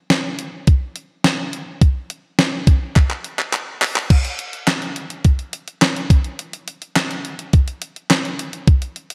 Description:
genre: pop.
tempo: 105 BPM.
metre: 4/4.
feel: straight.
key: none.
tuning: none.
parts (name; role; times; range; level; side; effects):
clean 12-bit digital drum machine; drums; 0.1-9.1 s; crash cymbal, handclaps, hi-hat, kick drum, snare drum; -18 LUFS; equal; none.
room: moderate scoring stage reverb, RT60 1.6 s, digital ambience.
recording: dark, warm production.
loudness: -19 LUFS.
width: mono.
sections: 0.0-4.1 A section; 4.1-9.1 B section.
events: drum fill 3.0-4.1.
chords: none.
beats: 0.10 0.67 1.25 | 1.82 2.39 2.96 3.53 | 4.10 4.67 5.25 5.82 | 6.39 6.96 7.53 8.10 | 8.67.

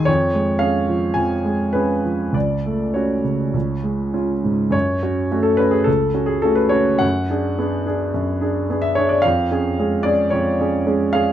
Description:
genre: classical, romantic character piece for solo piano.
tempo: 96-114 BPM.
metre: 4/4.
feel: rubato.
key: F# minor.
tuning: A4 = 440 Hz.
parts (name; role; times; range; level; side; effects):
warm grand piano; solo; 0.0-11.3 s; C#2 to B#5; -17 LUFS; equal; none.
room: light reverb.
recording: dark, warm production.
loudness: -17 LUFS.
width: side -11 dB against mid.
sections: 0.0-4.7 A section; 4.7-11.3 B section.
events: none.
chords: 0.1 C#/E#; 2.3 F#m/C#; 3.5 C#; 4.7 F#m; 7.0 G#m7b5/F#; 9.2 C#/E#.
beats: | 0.08 0.61 1.15 1.73 | 2.34 2.95 3.54 4.14 | 4.74 5.31 5.87 6.43 | 7.03 7.60 8.15 8.70 | 9.24 9.79 10.33 10.87.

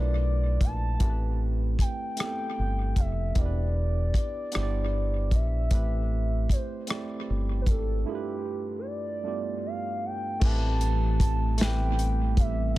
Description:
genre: slow six-eight R&B.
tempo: 51 BPM (dotted quarters).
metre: 6/8.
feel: straight.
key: A minor.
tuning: A4 = 439 Hz.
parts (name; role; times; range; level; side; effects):
gliding portamento lead; melody; 0.0-12.7 s; G4 to A5; -34 LUFS; equal; chorus, analog delay.
barky tine electric piano; accompaniment; 0.0-12.8 s; G2 to D5; -35 LUFS; moving between right 3 dB and right 9 dB; overdrive, auto-pan, analog delay.
deep dub fingered electric bass; bass; 0.0-12.7 s; E1 to B1; -26 LUFS; equal; none.
warm soul drum kit; drums; 0.6-12.6 s; crash cymbal, hi-hat, kick drum, rim click, snare drum; -26 LUFS; equal; none.
hollow soft pad; sustained chords; 10.4-12.8 s; E3 to G4; -36 LUFS; equal; chorus.
room: small room ambience.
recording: echo-heavy mix.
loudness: -25 LUFS.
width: side -17 dB against mid.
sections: 0.0-10.4 A section; 10.4-12.8 B section.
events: break 8.1-10.4.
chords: 0.0 G13 (rootless); 1.0 Am7; 3.4 Em7; 5.7 Am7; 8.1 G13; 10.4 Am7.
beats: | 1.00 2.18 | 3.36 4.53 | 5.71 6.88 | 8.06 9.24 | 10.41 11.59 | 12.77.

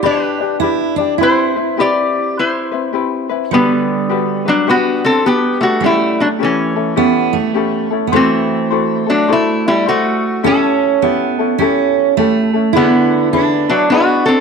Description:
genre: Hawaiian.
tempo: 104 BPM.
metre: 4/4.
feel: swing 62% on 8ths.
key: C major, G major from 3.5 s.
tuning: A4 = 442 Hz.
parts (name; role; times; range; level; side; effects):
fingerpicked steel-string acoustic guitar; second line; 0.0-14.4 s; G3 to G4; -17 LUFS; right 10 dB; none.
ukulele; accompaniment; 0.0-14.4 s; C4 to D5; -18 LUFS; left 10 dB; none.
lap resonator guitar; melody; 0.1-14.4 s; D3 to D5; -15 LUFS; left 1 dB; none.
room: moderate echo chamber reverb, RT60 1.9 s, small room ambience.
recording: 1960s-style stereo with parts hard left and right.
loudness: -12 LUFS.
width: side -5 dB against mid.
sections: 0.0-3.5 A section; 3.5-14.4 B section.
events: none.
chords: 0.0 G; 1.2 Cmaj7; 3.5 Gmaj7; 5.8 A7; 8.1 F#m7b5; 10.4 A7; 12.8 E7.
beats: 0.04 0.62 | 1.20 1.78 2.36 2.93 | 3.51 4.09 4.67 5.25 | 5.83 6.40 6.98 7.56 | 8.14 8.71 9.29 9.87 | 10.45 11.03 11.60 12.18 | 12.76 13.34 13.91.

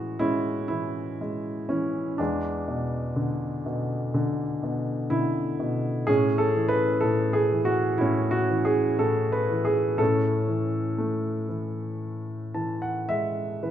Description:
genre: classical, lyrical solo piano.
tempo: 61 BPM.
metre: 4/4.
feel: rubato.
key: A major.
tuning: A4 = 440 Hz.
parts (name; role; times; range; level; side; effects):
warm grand piano; solo; 0.0-13.7 s; E2 to A5; -24 LUFS; equal; none.
room: moderate recital hall reverb, RT60 1.5 s.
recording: minimal, uncompressed stereo recording.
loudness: -24 LUFS.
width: side -10 dB against mid.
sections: 0.0-13.7 A section.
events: grand piano fill 12.0-13.7.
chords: 0.0 Amaj7; 2.2 E7; 6.1 A.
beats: 0.20 1.20 | 2.19 3.17 4.16 5.12 | 6.08 7.04 8.01 9.01 | 9.99 10.98 12.02 13.09.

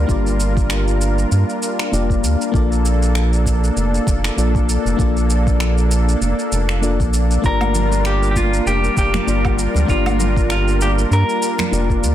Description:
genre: sunset chillout.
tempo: 98 BPM.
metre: 4/4.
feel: swing 56% on 16ths.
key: G minor.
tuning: A4 = 440 Hz.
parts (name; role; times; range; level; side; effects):
mellow FM electric piano; accompaniment; 0.0-12.1 s; Bb3 to D5; -23 LUFS; moving between left 9 dB and right 4 dB; chorus, auto-pan, ping-pong delay.
lush unison pad; sustained chords; 0.0-12.1 s; G3 to Bb4; -24 LUFS; left 1 dB; chorus.
round analog bass; bass; 0.0-12.1 s; F1 to G2; -17 LUFS; equal; none.
electronic kick drum; drums; 0.1-12.0 s; none; -20 LUFS; equal; overdrive, studio reverb.
electronic shaker, finger snaps and woodblock; drums; 0.1-12.1 s; none; -26 LUFS; right 1 dB; overdrive, studio reverb, soft clipping on snare.
clean electric guitar; melody; 7.5-12.0 s; F4 to Bb4; -21 LUFS; left 2 dB; tape echo.
congas; percussion; 7.6-11.7 s; none; -27 LUFS; right 5 dB; none.
room: light reverb, digital ambience.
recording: dense, heavily limited modern master.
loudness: -15 LUFS.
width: side -12 dB against mid.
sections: 0.0-12.1 A section.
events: none.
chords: 0.0 Gm7; 2.5 Bbmaj7; 7.4 Gm7.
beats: | 0.09 0.70 1.31 1.93 | 2.54 3.15 3.76 4.38 | 4.99 5.60 6.21 6.83 | 7.44 8.05 8.66 9.27 | 9.89 10.50 11.11 11.72.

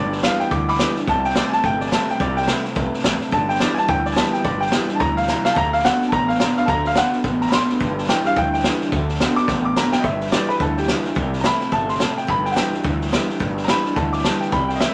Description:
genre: rockabilly.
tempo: 214 BPM.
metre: 4/4.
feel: swing 59% on 8ths.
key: G major.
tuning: A4 = 440 Hz.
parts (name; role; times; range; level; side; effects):
clear upright piano; melody; 0.0-14.9 s; G4 to D6; -24 LUFS; equal; none.
picked steel-string acoustic guitar; accompaniment; 0.0-14.9 s; G2 to G4; -31 LUFS; equal; none.
electric guitar through a small old amp; riff; 0.0-14.9 s; G2 to B3; -27 LUFS; equal; spring reverb.
upright bass; bass; 0.0-14.8 s; G1 to D2; -30 LUFS; equal; none.
vintage drum kit; drums; 0.1-14.9 s; hi-hat, kick drum, snare drum; -25 LUFS; equal; none.
room: moderate studio reverb, RT60 0.7 s.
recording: none.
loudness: -20 LUFS.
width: mono.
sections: 0.0-10.0 A section; 10.0-14.9 B section.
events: upright piano solo 0.0-10.0; drum fill 5.3, 9.5-10.0.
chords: 0.0 G; 1.1 C; 3.3 G; 5.6 D; 7.8 G; 8.9 D; 10.0 G; 11.2 C; 12.3 G.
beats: 0.23 0.51 0.80 | 1.08 1.36 1.64 1.92 | 2.20 2.48 2.76 3.04 | 3.32 3.60 3.88 4.16 | 4.44 4.72 5.00 5.28 | 5.56 5.84 6.12 6.40 | 6.68 6.96 7.24 7.52 | 7.80 8.08 8.36 8.64 | 8.92 9.20 9.48 9.76 | 10.04 10.32 10.61 10.88 | 11.16 11.45 11.72 12.01 | 12.29 12.56 12.85 13.12 | 13.40 13.68 13.96 14.24 | 14.52 14.80.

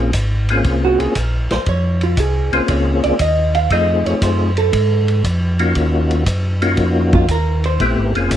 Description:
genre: soul jazz organ trio.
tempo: 117 BPM.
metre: 4/4.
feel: swing 69% on 8ths.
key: Bb minor.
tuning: A4 = 440 Hz.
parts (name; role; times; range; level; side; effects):
percussive tonewheel organ; melody; 0.0-8.4 s; A3 to Ab4; -18 LUFS; left 3 dB; slow rotary speaker, chorus vibrato.
mellow tonewheel organ; bass; 0.0-8.4 s; F1 to G#2; -17 LUFS; equal; slow rotary speaker.
vintage drum kit; drums; 0.1-8.4 s; hi-hat, kick drum, ride cymbal, snare drum; -23 LUFS; equal; none.
vintage hollow-body jazz guitar; accompaniment; 0.8-8.1 s; F4 to F5; -19 LUFS; right 4 dB; none.
room: light reverb.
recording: dark, warm production.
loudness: -14 LUFS.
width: side -11 dB against mid.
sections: 0.0-8.4 A section.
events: hollow-body jazz guitar solo 0.0-8.4.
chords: 0.0 Bbm7; 3.7 F7#9; 5.8 Ebm7; 7.8 Bbm7.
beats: 0.14 0.65 1.16 | 1.67 2.18 2.69 3.21 | 3.72 4.23 4.74 5.25 | 5.76 6.27 6.79 7.30 | 7.81 8.32.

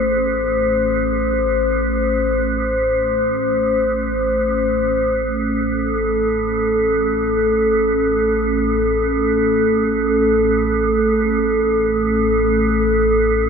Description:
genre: world meditative, free-time meditation music.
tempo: free time.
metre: none.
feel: none.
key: A minor.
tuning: A4 = 438 Hz.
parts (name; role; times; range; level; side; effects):
icy glass pad; drone; 0.0-13.5 s; A1; -19 LUFS; right 2 dB; chorus, built-in reverb.
glass harmonica; texture; 0.0-13.5 s; A4 to C5; -18 LUFS; left 2 dB; none.
room: wet lush hall reverb, RT60 2.8 s.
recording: none.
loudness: -15 LUFS.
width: side -6 dB against mid.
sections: 0.0-4.6 A section; 4.6-13.5 A section.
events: none.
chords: none.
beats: free time.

